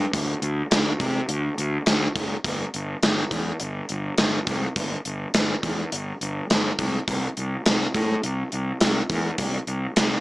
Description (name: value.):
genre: rock, shoegaze and dream pop.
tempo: 104 BPM.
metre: 4/4.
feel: straight.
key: unclear.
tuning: A4 = 440 Hz.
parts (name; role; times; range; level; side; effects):
fuzz fingered electric bass; bass; 0.0-10.2 s; F#1 to C3; -26 LUFS; equal; overdrive.
gated 80s drum kit; drums; 0.1-10.1 s; hi-hat, kick drum, snare drum; -22 LUFS; equal; none.
room: light reverb.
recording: small speaker sound.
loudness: -22 LUFS.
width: side -19 dB against mid.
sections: 0.0-10.2 A section.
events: none.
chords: none.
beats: | 0.14 0.72 1.29 1.87 | 2.45 3.03 3.61 4.18 | 4.76 5.34 5.92 6.49 | 7.07 7.65 8.22 8.80 | 9.38 9.96.